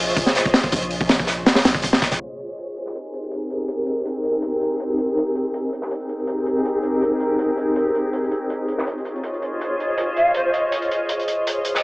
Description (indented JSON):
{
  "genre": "drum and bass, jungle",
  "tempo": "162 BPM",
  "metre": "4/4",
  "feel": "swing 53% on 16ths",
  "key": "unclear",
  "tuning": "A4 = 440 Hz",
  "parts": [
    { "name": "long sustained 808-style bass", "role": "bass", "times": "0.0-2.2 s", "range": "F1 to Bb1", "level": "-31 LUFS", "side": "equal", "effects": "none" },
    { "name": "crunchy breakbeat drum kit", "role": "drums", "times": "0.1-11.8 s", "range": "hi-hat, snare drum", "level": "-28 LUFS", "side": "equal", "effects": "high-pass filter on hats, high-pass filter on snare, high-pass filter on room" },
    { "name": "crunchy breakbeat drum kit", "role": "drums", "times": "0.2-2.2 s", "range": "hi-hat, kick drum, snare drum", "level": "-17 LUFS", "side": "equal", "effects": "none" },
    { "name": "granular cloud pad", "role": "sustained chords", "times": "0.7-11.8 s", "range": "C4 to Eb5", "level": "-22 LUFS", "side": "equal", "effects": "built-in reverb" },
    { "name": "mellow hollow silver concert flute", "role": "melody", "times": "10.2-10.5 s", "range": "C5 to F5", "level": "-21 LUFS", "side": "equal", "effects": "dub echo" }
  ],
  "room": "wet echo chamber reverb, RT60 1.4 s, studio ambience",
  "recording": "vinyl crackle, low-pass filter, small speaker sound",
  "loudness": "-19 LUFS",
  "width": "side -23 dB against mid",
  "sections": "0.0-2.2 A section; 2.2-11.8 B section",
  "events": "drop 0.0-2.2; filter sweep 2.2-11.8",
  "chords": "0.0 Bbm11; 2.2 Abmaj9/C; 8.1 Dbmaj9/F"
}